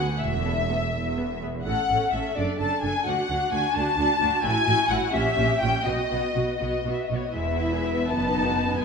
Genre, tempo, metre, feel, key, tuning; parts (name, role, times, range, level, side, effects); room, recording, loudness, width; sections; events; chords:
quick classical-period movement for string orchestra; 79-88 BPM (dotted quarters); 6/8; rubato; A4 = 440 Hz
rich symphonic violin section; melody; 0.0-8.8 s; C#5 to A5; -26 LUFS; left 4 dB
warm symphonic violin section; second line; 0.0-8.8 s; G#3 to A5; -29 LUFS; left 2 dB
rich symphonic viola section; accompaniment; 0.0-8.8 s; B3 to A4; -29 LUFS; right 1 dB
rich symphonic cello section; bass; 0.0-8.8 s; D2 to B2; -31 LUFS; right 3 dB
rich symphonic double bass section; bass; 0.0-8.8 s; E1 to D2; -31 LUFS; right 3 dB
wet scoring stage reverb, RT60 1.6 s; dark, warm production; -22 LUFS; side -5 dB against mid
0.0-7.3 A section; 7.3-8.8 B section
0.2 Esus4; 0.9 E; 1.7 A; 2.4 D/F#; 3.1 D; 4.4 F#m7/A; 5.1 A#dim7; 5.9 B; 7.3 E; 8.1 B7/F#